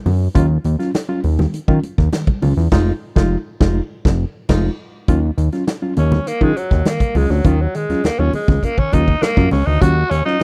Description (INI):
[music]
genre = funk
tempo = 102 BPM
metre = 4/4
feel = straight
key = Eb minor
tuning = A4 = 440 Hz
[part]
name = fat analog bass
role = bass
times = 0.1-10.2 s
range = F1 to Eb3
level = -18 LUFS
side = equal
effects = none
[part]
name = swinging big-band drum kit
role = drums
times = 0.1-10.4 s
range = crash cymbal, hi-hat, kick drum, snare drum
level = -20 LUFS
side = equal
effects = none
[part]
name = congas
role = percussion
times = 0.1-10.4 s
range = none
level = -27 LUFS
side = equal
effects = none
[part]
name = bright reed electric piano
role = stabs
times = 0.3-10.4 s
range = Eb3 to F4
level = -24 LUFS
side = equal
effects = fast tremolo
[part]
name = raspy tenor saxophone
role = melody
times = 6.0-10.4 s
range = Eb3 to Gb4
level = -23 LUFS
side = equal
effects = none
[sound]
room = small room ambience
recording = dry, close 1970s-style studio recording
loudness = -17 LUFS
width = mono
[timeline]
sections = 0.0-5.1 A section; 5.1-10.4 B section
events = band accent 2.7-5.1; tenor saxophone solo 5.1-10.4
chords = 0.0 Ebm9; 2.7 Fm7; 5.1 Ebm9